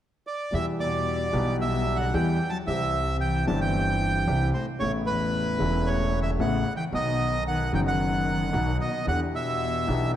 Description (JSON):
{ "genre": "tango", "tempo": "112 BPM", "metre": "4/4", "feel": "rubato", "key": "E minor", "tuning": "A4 = 439 Hz", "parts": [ { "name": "bandoneon", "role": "melody", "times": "0.3-10.1 s", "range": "B4 to A5", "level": "-28 LUFS", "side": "right 2 dB", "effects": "analog delay" }, { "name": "warm cello", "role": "second line", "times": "0.5-10.1 s", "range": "E2 to F#3", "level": "-32 LUFS", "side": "left 4 dB", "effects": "none" }, { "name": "warm concert grand piano", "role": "accompaniment", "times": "0.5-10.2 s", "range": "E1 to G4", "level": "-28 LUFS", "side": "left 2 dB", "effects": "none" }, { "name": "upright bass", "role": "bass", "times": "0.5-10.2 s", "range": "E1 to E2", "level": "-29 LUFS", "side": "right 1 dB", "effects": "none" } ], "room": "moderate concert hall reverb, RT60 2.2 s", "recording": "none", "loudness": "-23 LUFS", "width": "side -11 dB against mid", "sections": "0.5-10.2 A section", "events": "none", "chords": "0.0 N.C.; 0.5 Em; 2.7 C; 4.8 Aadd9; 6.9 B; 9.1 Em7" }